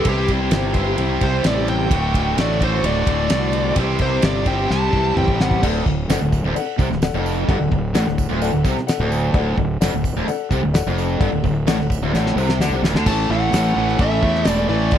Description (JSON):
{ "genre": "classic rock", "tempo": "129 BPM", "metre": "4/4", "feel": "straight", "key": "D mixolydian", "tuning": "A4 = 440 Hz", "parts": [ { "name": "smooth overdriven lead guitar", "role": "melody", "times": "0.0-5.6, 13.1-15.0 s", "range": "G4 to A5", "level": "-23 LUFS", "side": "right 1 dB", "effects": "slapback echo" }, { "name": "picked acoustic archtop guitar", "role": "accompaniment", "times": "0.0-5.6, 13.1-15.0 s", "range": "A2 to G4", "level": "-28 LUFS", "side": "left 4 dB", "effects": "none" }, { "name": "overdriven electric guitar", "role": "riff", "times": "0.0-15.0 s", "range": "D2 to C5", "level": "-21 LUFS", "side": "equal", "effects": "none" }, { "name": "damped 70s drum kit", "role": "drums", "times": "0.0-15.0 s", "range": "crash cymbal, kick drum, ride cymbal, snare drum, toms", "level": "-21 LUFS", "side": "equal", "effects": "none" }, { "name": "fuzz fingered electric bass", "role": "bass", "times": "0.1-15.0 s", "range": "D1 to E2", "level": "-22 LUFS", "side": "equal", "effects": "overdrive" }, { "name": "dark upright piano", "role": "accompaniment", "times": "5.6-13.0 s", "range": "A4 to F#5", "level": "-27 LUFS", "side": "left 12 dB", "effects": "none" }, { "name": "tambourine", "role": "percussion", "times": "6.1-14.6 s", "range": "none", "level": "-38 LUFS", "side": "right 22 dB", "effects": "none" } ], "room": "little or no reverb", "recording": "dry, close 1970s-style studio recording", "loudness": "-16 LUFS", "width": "side -10 dB against mid", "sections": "0.0-5.6 A section; 5.6-13.1 B section; 13.1-15.0 C section", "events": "lead electric guitar solo 0.0-5.6; drum fill 4.7-5.6, 12.1-13.1", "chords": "0.1 C; 1.9 D; 3.8 C; 5.6 D; 13.1 A", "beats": "| 0.06 0.52 0.98 1.45 | 1.91 2.38 2.84 3.30 | 3.77 4.23 4.70 5.16 | 5.62 6.09 6.55 7.02 | 7.48 7.95 8.41 8.88 | 9.34 9.81 10.27 10.74 | 11.20 11.67 12.13 12.60 | 13.06 13.53 14.00 14.46 | 14.93" }